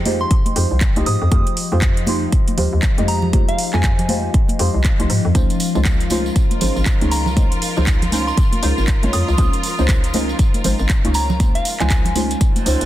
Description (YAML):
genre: deep house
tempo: 119 BPM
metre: 4/4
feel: swing 60% on 16ths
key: unclear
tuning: A4 = 440 Hz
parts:
  - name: warbly tape-like pad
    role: sustained chords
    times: 0.0-12.9 s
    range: F3 to C6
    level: -28 LUFS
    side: left 4 dB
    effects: chorus, built-in reverb, sidechain pumping
  - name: deep mellow chord stab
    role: stabs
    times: 0.0-12.9 s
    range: G3 to Eb5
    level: -24 LUFS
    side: equal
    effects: chorus, phaser, sidechain pumping, dub echo
  - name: hollow knocking FM bass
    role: bass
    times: 0.0-12.9 s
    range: Ab1 to Ab2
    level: -20 LUFS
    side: equal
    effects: sidechain pumping
  - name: house drum kit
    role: drums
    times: 0.1-12.9 s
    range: handclaps, hi-hat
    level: -25 LUFS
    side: right 2 dB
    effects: none
  - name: congas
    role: percussion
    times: 0.1-12.6 s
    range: none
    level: -26 LUFS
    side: right 1 dB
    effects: none
  - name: soft synth bell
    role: melody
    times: 0.2-12.2 s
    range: F5 to Eb6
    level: -26 LUFS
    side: right 1 dB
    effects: chorus, tape echo
  - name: electronic kick drum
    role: drums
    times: 0.3-12.5 s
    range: none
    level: -16 LUFS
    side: equal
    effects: none
  - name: clear studio string section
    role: texture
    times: 5.3-12.9 s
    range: F4 to Bb4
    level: -29 LUFS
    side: right 1 dB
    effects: sidechain pumping
  - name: tambourine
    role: percussion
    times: 5.4-12.9 s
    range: none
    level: -33 LUFS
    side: right 3 dB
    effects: none
  - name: reverse cymbal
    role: sound effects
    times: 12.5-12.9 s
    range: none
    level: -28 LUFS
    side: right 7 dB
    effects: none
room: light reverb, digital ambience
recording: dense, heavily limited modern master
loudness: -15 LUFS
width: side -14 dB against mid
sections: 0.0-12.9 A section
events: reverse cymbal 12.5-12.9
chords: 0.0 Fm9; 5.3 Dbmaj7